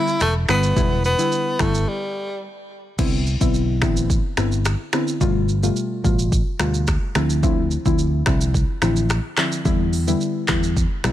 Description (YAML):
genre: afrobeats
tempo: 108 BPM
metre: 4/4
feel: straight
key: unclear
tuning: A4 = 445 Hz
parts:
  - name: breathy tenor saxophone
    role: melody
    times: 0.0-2.4 s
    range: G3 to E4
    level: -22 LUFS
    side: left 1 dB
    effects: digital delay
  - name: soft round pluck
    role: accompaniment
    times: 0.0-11.1 s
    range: B2 to F4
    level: -23 LUFS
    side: left 2 dB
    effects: chorus
  - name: afro-pop drum kit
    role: drums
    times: 0.1-11.1 s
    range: crash cymbal, finger snaps, handclaps, hi-hat, kick drum, rim click, shaker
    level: -22 LUFS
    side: equal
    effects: vintage 12-bit sampler grit
  - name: fingered electric bass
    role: bass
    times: 0.2-11.1 s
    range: E1 to E2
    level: -21 LUFS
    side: equal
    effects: none
room: little or no reverb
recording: none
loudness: -18 LUFS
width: side -12 dB against mid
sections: 0.0-3.0 A section; 3.0-11.1 B section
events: break 1.9-3.0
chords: 0.0 Em7; 3.0 Cmaj9; 5.2 G9; 7.2 Dm9; 9.7 Em7